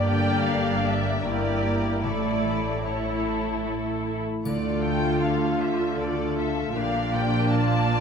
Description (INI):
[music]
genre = classical, slow romantic movement for symphony orchestra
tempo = 73-82 BPM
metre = 3/4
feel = rubato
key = D minor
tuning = A4 = 440 Hz
[part]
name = muted studio violin section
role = melody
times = 0.0-8.0 s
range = C#5 to A5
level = -30 LUFS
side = left 4 dB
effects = none
[part]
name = muted studio violin section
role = second line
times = 0.0-8.0 s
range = E4 to D5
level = -31 LUFS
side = left 3 dB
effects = none
[part]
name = muted studio viola section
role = accompaniment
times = 0.0-8.0 s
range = A3 to F4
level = -29 LUFS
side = right 2 dB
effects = none
[part]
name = clear French horn section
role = sustained chords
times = 0.0-8.0 s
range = A3 to F4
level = -32 LUFS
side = left 1 dB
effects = none
[part]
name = concert harp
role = arpeggios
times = 0.0-8.0 s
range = G2 to A4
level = -32 LUFS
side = left 9 dB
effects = none
[part]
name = muted studio cello section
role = bass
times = 0.0-8.0 s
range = G2 to D3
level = -30 LUFS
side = right 3 dB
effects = none
[part]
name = muted studio double bass section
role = bass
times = 0.0-8.0 s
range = G1 to D2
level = -31 LUFS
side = right 4 dB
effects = none
[part]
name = timpani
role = percussion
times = 2.0-5.6 s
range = A2 to D3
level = -36 LUFS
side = right 2 dB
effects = none
[part]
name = triangle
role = percussion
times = 4.5-6.0 s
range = none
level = -51 LUFS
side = left 4 dB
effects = none
[sound]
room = moderate scoring stage reverb, RT60 1.8 s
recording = close, detailed microphones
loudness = -22 LUFS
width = side -6 dB against mid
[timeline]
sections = 0.0-8.0 A section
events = none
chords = 0.0 Gm; 1.3 Edim/G; 2.0 A; 4.5 Dm; 6.8 Bbmaj7